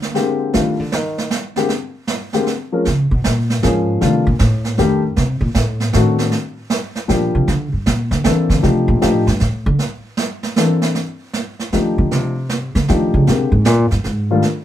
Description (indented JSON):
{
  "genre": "jazz piano trio",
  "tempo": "155 BPM",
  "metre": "3/4",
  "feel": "swing 66% on 8ths",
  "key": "F mixolydian",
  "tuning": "A4 = 440 Hz",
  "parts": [
    { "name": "upright bass", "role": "bass", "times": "0.0-14.4 s", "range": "F2 to E3", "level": "-16 LUFS", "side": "equal", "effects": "none" },
    { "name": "snare drum and brushed snare drum", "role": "drums", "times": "0.0-14.6 s", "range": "none", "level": "-21 LUFS", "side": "right 4 dB", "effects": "none" },
    { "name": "dark grand piano", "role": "melody", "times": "0.1-14.4 s", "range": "D3 to Bb4", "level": "-17 LUFS", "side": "left 3 dB", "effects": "none" }
  ],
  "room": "moderate small room reverb, RT60 0.5 s",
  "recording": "band playing live in one room",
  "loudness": "-15 LUFS",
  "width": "side -12 dB against mid",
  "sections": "0.0-10.9 A section; 10.9-14.6 A section",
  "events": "upright bass solo 0.0-14.6",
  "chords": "0.0 Bb13; 0.5 F7sus2 (rootless); 1.7 N.C.; 2.8 Bbm7; 4.0 F13; 5.2 D7b9; 6.3 Gm7; 7.5 C13; 8.6 F13; 9.8 C13; 10.9 F13; 13.3 Bb13"
}